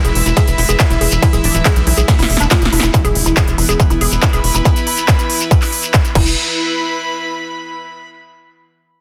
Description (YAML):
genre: psychedelic trance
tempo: 140 BPM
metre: 4/4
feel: straight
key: E major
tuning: A4 = 440 Hz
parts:
  - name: evolving wavetable pad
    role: sustained chords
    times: 0.0-6.2 s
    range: E3 to B3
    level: -30 LUFS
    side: equal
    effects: phaser, built-in reverb, sidechain pumping
  - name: woody wave-folded pluck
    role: riff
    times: 0.0-6.4 s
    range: D4 to G#4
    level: -24 LUFS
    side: equal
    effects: chorus, sidechain pumping, digital delay
  - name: tight sequencer bass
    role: bass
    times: 0.0-6.4 s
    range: D1 to B1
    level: -19 LUFS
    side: equal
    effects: none
  - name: big-room dance drum kit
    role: drums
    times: 0.0-6.2 s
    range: crash cymbal, handclaps, hi-hat, ride cymbal, snare drum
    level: -21 LUFS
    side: equal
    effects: none
  - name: shekere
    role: percussion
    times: 0.0-6.3 s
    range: none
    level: -27 LUFS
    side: equal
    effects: none
  - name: rich chamber string section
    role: texture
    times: 0.0-8.0 s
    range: E4 to B5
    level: -24 LUFS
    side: equal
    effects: sidechain pumping
  - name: electronic kick drum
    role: drums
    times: 0.4-6.2 s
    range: none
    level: -15 LUFS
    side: equal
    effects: distortion, overdrive
  - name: resonant blip pluck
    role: second line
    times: 0.6-1.8 s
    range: B3 to D4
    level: -33 LUFS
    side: equal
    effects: none
  - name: impact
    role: sound effects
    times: 3.0-4.7 s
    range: none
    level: -29 LUFS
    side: equal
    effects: none
room: light reverb, digital ambience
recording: dense, heavily limited modern master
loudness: -14 LUFS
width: mono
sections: 0.0-2.9 A section; 2.9-6.4 B section; 6.4-8.1 C section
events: drop 0.0-2.9; drum fill 2.1-2.9; impact 2.9-4.7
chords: 0.0 E5